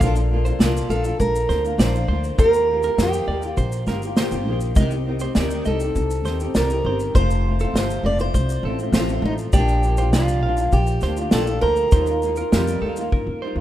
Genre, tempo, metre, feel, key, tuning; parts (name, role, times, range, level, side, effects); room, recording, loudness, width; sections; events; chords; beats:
acoustic pop; 101 BPM; 4/4; straight; A4 = 441 Hz
flamenco guitar; accompaniment; 0.0-13.6 s; F2 to G4; -27 LUFS; left 1 dB; double-tracked left and right
clean electric guitar; arpeggios; 0.0-13.6 s; A4 to F5; -33 LUFS; right 4 dB
upright bass; bass; 0.0-13.6 s; F1 to G2; -22 LUFS; equal
unplugged drum kit; drums; 0.0-13.3 s; kick drum, shaker, snare drum; -21 LUFS; equal
picked acoustic archtop guitar; melody; 0.9-13.6 s; Eb4 to D5; -23 LUFS; right 1 dB; tape echo
light reverb, small room ambience; rough home demo mix; -18 LUFS; side -13 dB against mid
0.0-13.6 A section
drum fill 13.1-13.6
0.0 Bb; 2.4 Ebadd9; 4.8 Cm; 7.1 F; 9.5 Bb; 11.9 Ebadd9
| 0.01 0.60 1.20 1.79 | 2.39 2.98 3.58 4.17 | 4.77 5.36 5.96 6.55 | 7.15 7.74 8.34 8.94 | 9.53 10.13 10.73 11.32 | 11.92 12.52 13.12